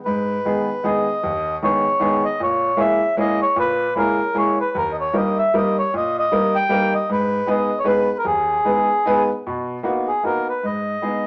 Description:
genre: musette waltz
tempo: 154 BPM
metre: 3/4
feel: swing 55% on 8ths, rubato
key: G# harmonic minor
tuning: A4 = 440 Hz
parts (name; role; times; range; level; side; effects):
- mellow accordion; melody; 0.1-11.3 s; G#4 to G5; -22 LUFS; equal; none
- warm upright piano; accompaniment; 0.1-11.2 s; D#2 to B4; -24 LUFS; equal; none
room: wet studio reverb, RT60 0.7 s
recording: none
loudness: -20 LUFS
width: mono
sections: 0.1-9.4 A section; 9.4-11.3 B section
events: none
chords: 0.1 G#m; 2.4 A#m7b5; 4.7 D#; 7.1 G#m; 9.4 Bmaj7; 10.6 G#m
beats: | 0.05 0.45 0.84 | 1.23 1.62 2.01 | 2.40 2.78 3.17 | 3.56 3.95 4.35 | 4.74 5.14 5.53 | 5.92 6.31 6.70 | 7.08 7.47 7.86 | 8.25 8.64 9.04 | 9.45 9.85 10.24 | 10.64 11.03

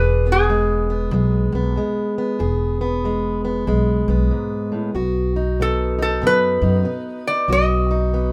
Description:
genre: acoustic country blues, solo or duo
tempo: 94 BPM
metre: 4/4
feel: swing 64% on 8ths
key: E major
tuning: A4 = 442 Hz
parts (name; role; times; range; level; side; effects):
- metal-body resonator slide guitar; melody; 0.0-1.5, 5.6-8.3 s; G#4 to D#5; -22 LUFS; equal; none
- fingerpicked plugged-in steel-string acoustic guitar; accompaniment; 0.0-8.3 s; E2 to G#4; -25 LUFS; equal; none
- upright bass; bass; 0.0-8.3 s; E1 to F#2; -22 LUFS; equal; none
room: moderate studio reverb, RT60 0.6 s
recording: none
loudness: -20 LUFS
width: mono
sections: 0.0-8.3 A section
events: none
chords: 0.0 E; 4.9 B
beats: 0.48 1.12 1.76 | 2.40 3.03 3.67 4.31 | 4.95 5.58 6.22 6.86 | 7.49 8.13

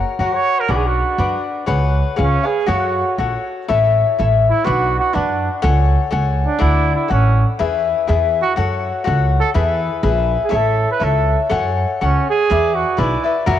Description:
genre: mexican folk, mariachi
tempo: 122 BPM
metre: 2/4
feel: rubato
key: F# minor, A major from 3.7 s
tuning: A4 = 440 Hz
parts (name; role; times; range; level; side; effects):
- cavaquinho; accompaniment; 0.0-13.6 s; D4 to G#5; -19 LUFS; left 6 dB; none
- warm trumpet; melody; 0.2-13.4 s; C#4 to C#5; -20 LUFS; right 6 dB; cassette tape
- upright bass; bass; 0.2-13.6 s; A1 to F#2; -18 LUFS; right 1 dB; none
room: moderate lush hall reverb, RT60 2.7 s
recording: home recording on cassette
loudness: -14 LUFS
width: side -11 dB against mid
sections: 0.0-3.7 A section; 3.7-11.5 B section; 11.5-13.6 A section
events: none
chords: 0.0 F#; 0.7 Bm; 1.7 C#7sus4; 2.2 C#7; 2.7 F#m; 3.7 A; 4.7 Bm; 5.6 F#madd9/C#; 6.6 D; 7.6 E; 8.6 F#m; 9.6 E; 10.5 A; 11.5 F#madd9; 12.5 E7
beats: 0.20 | 0.69 1.19 | 1.68 2.18 | 2.68 3.19 | 3.69 4.18 | 4.66 5.14 | 5.62 6.11 | 6.60 7.10 | 7.59 8.09 | 8.58 9.07 | 9.56 10.04 | 10.52 11.02 | 11.51 12.01 | 12.50 12.99 | 13.47

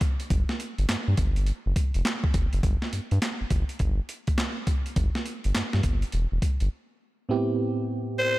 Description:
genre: R&B, new jack swing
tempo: 103 BPM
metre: 4/4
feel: swing 64% on 16ths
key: unclear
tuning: A4 = 439 Hz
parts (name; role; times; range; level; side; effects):
- boom bap sampler-style drum kit; drums; 0.0-6.7 s; handclaps, hi-hat, kick drum, snare drum; -26 LUFS; equal; overdrive
- round analog bass; bass; 0.3-6.7 s; E1 to G2; -25 LUFS; equal; none
- FM electric piano with auto-pan; accompaniment; 7.3-8.4 s; A2 to G4; -25 LUFS; right 2 dB; none
- growling tenor saxophone; melody; 8.2-8.4 s; C5; -21 LUFS; left 1 dB; none
room: light reverb, digital ambience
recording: none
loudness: -24 LUFS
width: side -18 dB against mid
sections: 0.0-7.3 A section; 7.3-8.4 B section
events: break 6.7-7.3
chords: 0.0 N.C.; 6.1 Em; 7.3 Am7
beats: | 0.30 0.89 1.47 2.05 | 2.63 3.22 3.80 4.38 | 4.96 5.55 6.13 6.71 | 7.29 7.88

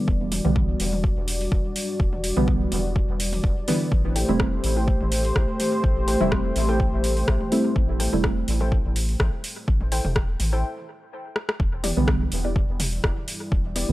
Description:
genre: dub techno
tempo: 125 BPM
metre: 4/4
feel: swing 54% on 16ths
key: E minor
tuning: A4 = 440 Hz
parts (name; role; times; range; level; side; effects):
- dark analog pad; sustained chords; 0.0-13.9 s; G3 to D5; -28 LUFS; equal; chorus, sidechain pumping
- deep mellow chord stab; stabs; 0.0-8.3, 12.0-13.9 s; D3 to E4; -26 LUFS; right 1 dB; chorus, phaser, sidechain pumping, dub echo
- soft dub sub bass; bass; 0.1-13.9 s; E1 to B1; -25 LUFS; equal; sidechain pumping
- electronic kick drum; drums; 0.1-13.6 s; none; -24 LUFS; equal; overdrive
- deep house drum kit; drums; 0.3-13.9 s; hi-hat, rim click; -29 LUFS; equal; overdrive
- electronic toms; percussion; 0.3-12.9 s; none; -35 LUFS; equal; none
- warbly dusty pluck; riff; 4.2-13.8 s; B3 to G5; -34 LUFS; left 2 dB; chorus, sidechain pumping, dub echo
room: little or no reverb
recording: dry, gritty hardware recording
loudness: -21 LUFS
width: side -17 dB against mid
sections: 0.0-11.6 A section; 11.6-13.9 A section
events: break 10.6-11.6; drum fill 11.4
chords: 0.0 Em7; 3.9 Am7; 11.6 Em7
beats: | 0.08 0.56 1.04 1.52 | 2.00 2.48 2.96 3.44 | 3.92 4.40 4.88 5.36 | 5.84 6.32 6.80 7.28 | 7.76 8.24 8.72 9.20 | 9.68 10.16 10.64 11.12 | 11.60 12.08 12.56 13.04 | 13.52

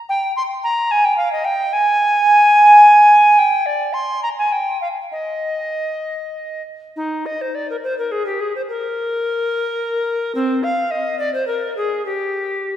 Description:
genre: classical, baroque-style fantasia for unaccompanied recorder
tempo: 62-74 BPM (dotted quarters)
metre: 6/8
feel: rubato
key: Eb major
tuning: A4 = 440 Hz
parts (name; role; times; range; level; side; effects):
- tenor recorder; solo; 0.1-12.8 s; C4 to C6; -14 LUFS; equal; none
room: wet concert hall reverb, RT60 2.4 s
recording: heard from further back in the room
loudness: -14 LUFS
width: side -12 dB against mid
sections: 0.0-7.0 A section; 7.0-12.8 B section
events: none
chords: none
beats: | 0.09 0.91 | 1.73 2.56 | 3.38 4.23 | 5.11 6.02 | 6.96 7.83 | 8.69 9.53 | 10.36 11.20 | 12.06

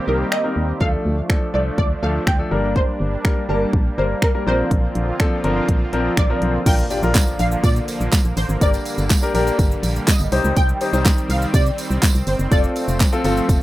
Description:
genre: dance-pop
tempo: 123 BPM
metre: 4/4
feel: straight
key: unclear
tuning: A4 = 440 Hz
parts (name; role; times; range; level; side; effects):
- wide unison pluck; melody; 0.0-13.6 s; Bb4 to G5; -25 LUFS; right 1 dB; ensemble chorus, tape echo
- filtered supersaw swell; sustained chords; 0.0-13.6 s; D3 to G4; -27 LUFS; right 1 dB; sidechain pumping
- clear concert grand piano; accompaniment; 0.1-13.6 s; F3 to A5; -23 LUFS; left 2 dB; sidechain pumping
- organ-like FM bass; bass; 0.1-13.6 s; F1 to C3; -22 LUFS; equal; sidechain pumping
- pop drum kit; drums; 0.3-13.6 s; crash cymbal, finger snaps, handclaps, hi-hat, kick drum, shaker, snare drum; -18 LUFS; equal; none
- tambourine; percussion; 6.7-13.6 s; none; -32 LUFS; right 5 dB; none
- impact; sound effects; 6.7-8.6 s; none; -32 LUFS; equal; none
room: light reverb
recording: rough home demo mix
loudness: -16 LUFS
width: side -16 dB against mid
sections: 0.0-6.7 A section; 6.7-13.6 B section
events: impact 6.7-8.6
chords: 0.0 Cm7; 0.8 Dm; 2.5 Gm; 4.5 Bbadd9; 6.7 Bb; 8.6 Gm; 10.3 Cm; 12.5 F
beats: 0.32 | 0.81 1.30 1.78 2.27 | 2.76 3.25 3.74 4.22 | 4.71 5.20 5.69 6.17 | 6.66 7.15 7.64 8.13 | 8.61 9.10 9.59 10.08 | 10.56 11.05 11.54 12.03 | 12.52 13.00 13.49

